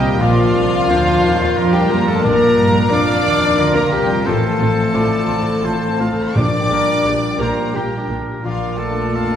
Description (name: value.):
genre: cinematic, emotional film score for orchestra.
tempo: 87 BPM.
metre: 3/4.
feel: rubato.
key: Bb major.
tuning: A4 = 444 Hz.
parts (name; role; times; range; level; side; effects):
warm studio violin section; melody; 0.0-9.4 s; F5 to D6; -23 LUFS; left 3 dB; none.
clear clarinet; second line; 0.0-9.4 s; F4 to D5; -22 LUFS; equal; none.
clear oboe; second line; 0.0-9.4 s; Bb4 to F5; -25 LUFS; right 1 dB; none.
dark studio violin section; second line; 0.0-9.4 s; F4 to D5; -22 LUFS; left 2 dB; none.
bright concert grand piano; accompaniment; 0.0-9.4 s; A1 to G4; -24 LUFS; left 1 dB; none.
warm studio viola section; accompaniment; 0.0-9.4 s; C4 to Eb5; -27 LUFS; right 1 dB; none.
dark French horn section; sustained chords; 0.0-9.4 s; F3 to D4; -22 LUFS; left 1 dB; none.
concert harp; arpeggios; 0.0-9.4 s; A2 to C5; -25 LUFS; left 5 dB; none.
dark studio cello section; bass; 0.0-9.4 s; A2 to Bb3; -24 LUFS; right 2 dB; none.
warm studio double bass section; bass; 0.0-9.4 s; A1 to Bb2; -25 LUFS; right 3 dB; none.
timpani; percussion; 6.4-7.4 s; Bb2; -23 LUFS; equal; none.
room: wet scoring stage reverb, RT60 1.9 s.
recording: heard from further back in the room.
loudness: -14 LUFS.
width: side -9 dB against mid.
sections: 0.0-9.4 A section.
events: none.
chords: 0.2 Bb; 4.3 F/A; 6.4 Gm/Bb; 8.4 Bb.